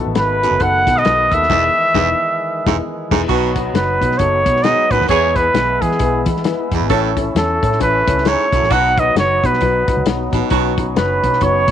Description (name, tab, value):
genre	uptempo 1960s-style soul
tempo	133 BPM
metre	4/4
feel	swing 60% on 8ths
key	unclear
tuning	A4 = 441 Hz
part	dark upright piano	accompaniment	0.0-11.7 s	B3 to C#5	-22 LUFS	left 11 dB	none
part	overdriven tonewheel organ	sustained chords	0.0-11.7 s	D#3 to E4	-26 LUFS	right 1 dB	wide subtle chorus
part	vintage muted fingered electric bass	bass	0.1-11.7 s	E1 to E3	-22 LUFS	right 1 dB	none
part	warm trumpet	melody	0.2-11.7 s	G#4 to F#5	-15 LUFS	right 1 dB	none
part	glockenspiel with soft plastic mallets	second line	0.2-1.5, 11.0-11.7 s	B5 to F#6	-25 LUFS	right 3 dB	none
part	warm soul drum kit	drums	0.2-11.7 s	crash cymbal, hi-hat, kick drum, snare drum	-20 LUFS	left 3 dB	none
part	edgy baritone saxophone	riff	0.4-10.7 s	E2 to B2	-24 LUFS	right 14 dB	none
part	warm horn section	second line	3.3-10.8 s	D#3 to A4	-21 LUFS	right 14 dB	none
room	light reverb, studio ambience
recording	1960s-style stereo with parts hard left and right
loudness	-13 LUFS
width	side -10 dB against mid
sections	0.0-3.3 A section; 3.3-11.7 B section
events	band accent 1.5-3.3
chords	0.0 B7; 1.5 Emaj7; 3.3 B; 5.1 E; 6.9 A; 8.7 B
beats	0.15 0.60 1.05 | 1.50 1.95 2.39 2.84 | 3.29 3.74 4.19 4.64 | 5.09 5.55 6.00 6.45 | 6.90 7.35 7.80 8.25 | 8.71 9.16 9.61 10.06 | 10.51 10.96 11.41